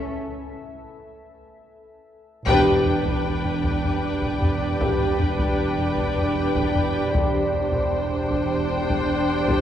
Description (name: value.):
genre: cinematic, suspense film score.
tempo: 77 BPM.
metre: 3/4.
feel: straight.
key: E minor.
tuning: A4 = 440 Hz.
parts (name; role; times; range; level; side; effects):
deep dark ambient pad; sustained chords; 0.0-9.6 s; G4 to C6; -29 LUFS; right 1 dB; chorus, built-in reverb.
mellow French horn section; sustained chords; 0.0-9.6 s; D4 to G4; -26 LUFS; left 2 dB; none.
muted chamber cello section; bass; 0.0-9.6 s; E2 to C#4; -37 LUFS; right 1 dB; none.
muted chamber violin section; melody; 2.5-9.6 s; G5; -30 LUFS; left 2 dB; none.
muted chamber violin section; second line; 2.5-9.6 s; B4 to C5; -30 LUFS; left 3 dB; none.
muted studio viola section; accompaniment; 2.5-9.6 s; D4; -27 LUFS; right 2 dB; none.
muted chamber double bass section; bass; 2.5-9.6 s; E1; -29 LUFS; right 1 dB; none.
taiko ensemble; drums; 2.5-9.6 s; none; -26 LUFS; equal; none.
room: wet church reverb, RT60 2.6 s.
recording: recorded in a church or concert hall.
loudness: -20 LUFS.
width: side -10 dB against mid.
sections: 0.0-2.5 A section; 2.5-9.6 B section.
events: break 0.1-2.5; drum fill 1.9-2.5; band accent 2.5-3.2.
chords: 0.1 N.C.; 2.5 Em7; 7.1 Csus2/E.